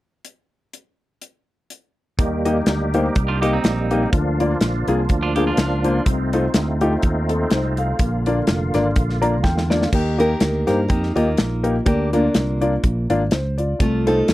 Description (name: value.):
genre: uptempo gospel.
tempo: 124 BPM.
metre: 4/4.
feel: swing 55% on 8ths.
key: Eb major.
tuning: A4 = 440 Hz.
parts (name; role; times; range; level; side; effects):
modern studio drum kit; drums; 0.2-14.3 s; crash cymbal, hi-hat, kick drum, snare drum; -20 LUFS; equal; none.
warm concert grand piano; accompaniment; 2.2-14.3 s; Bb2 to Bb5; -22 LUFS; left 2 dB; none.
bright tonewheel organ; sustained chords; 2.2-9.9 s; D3 to G4; -25 LUFS; right 2 dB; slow rotary speaker, chorus vibrato.
fingered electric bass; bass; 2.2-14.3 s; F1 to G2; -22 LUFS; equal; none.
clean electric guitar; second line; 3.3-6.0 s; C4 to G4; -26 LUFS; right 5 dB; none.
nylon-string guitar; melody; 9.9-14.3 s; A3 to Bb4; -20 LUFS; equal; none.
room: light reverb.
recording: dry, close 1970s-style studio recording.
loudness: -17 LUFS.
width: side -16 dB against mid.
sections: 0.2-2.2 A section; 2.2-9.9 B section; 9.9-14.3 C section.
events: grand piano fill 9.0-9.9; drum fill 9.4-9.9.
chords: 0.2 N.C.; 2.2 Eb; 4.1 Bb; 6.1 F7/C; 8.0 Bb; 9.9 Eb; 11.9 Bb; 13.8 F7/C.